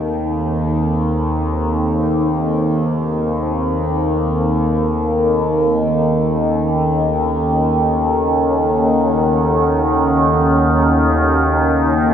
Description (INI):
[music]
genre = dark ambient drone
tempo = free time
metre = none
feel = none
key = unclear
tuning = A4 = 440 Hz
[part]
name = deep dark ambient pad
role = sustained chords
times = 0.0-12.1 s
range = C4 to Gb5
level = -21 LUFS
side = equal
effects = chorus, built-in reverb
[part]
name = overtone-sweeping drone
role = drone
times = 0.0-12.1 s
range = Eb2 to Eb3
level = -15 LUFS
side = equal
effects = chorus, built-in reverb, phaser
[sound]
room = wet cathedral reverb, RT60 6.1 s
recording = none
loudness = -14 LUFS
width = side -8 dB against mid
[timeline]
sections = 0.0-12.1 A section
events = fade-in on ambient pad 0.0-12.1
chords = 0.0 F; 5.2 Gbm